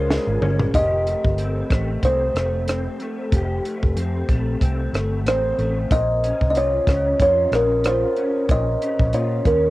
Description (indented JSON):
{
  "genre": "indie pop, bedroom pop",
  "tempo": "93 BPM",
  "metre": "4/4",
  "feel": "swing 55% on 16ths",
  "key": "unclear",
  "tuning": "A4 = 440 Hz",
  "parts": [
    { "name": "kalimba", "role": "melody", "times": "0.0-9.7 s", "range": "Bb4 to Eb5", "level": "-21 LUFS", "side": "equal", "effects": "wide subtle chorus, cassette tape, tape echo" },
    { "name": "electric guitar through a small old amp", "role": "accompaniment", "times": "0.0-9.7 s", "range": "F2 to G4", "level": "-27 LUFS", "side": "left 1 dB", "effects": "ensemble chorus, vibrato effect, cassette tape" },
    { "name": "vintage muted fingered electric bass", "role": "bass", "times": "0.0-9.7 s", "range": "F1 to Bb2", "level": "-24 LUFS", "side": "equal", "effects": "tube saturation" },
    { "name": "compact cocktail drum kit", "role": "drums", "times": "0.1-9.6 s", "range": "hi-hat, kick drum, rim click, snare drum, toms", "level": "-21 LUFS", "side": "equal", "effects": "cassette tape" }
  ],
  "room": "light reverb",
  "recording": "home recording on cassette",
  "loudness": "-18 LUFS",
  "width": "side -18 dB against mid",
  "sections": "0.7-9.7 A section",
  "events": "drum fill 0.1-0.7",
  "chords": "0.0 Bbm7; 0.7 F9; 5.9 Bbmadd9"
}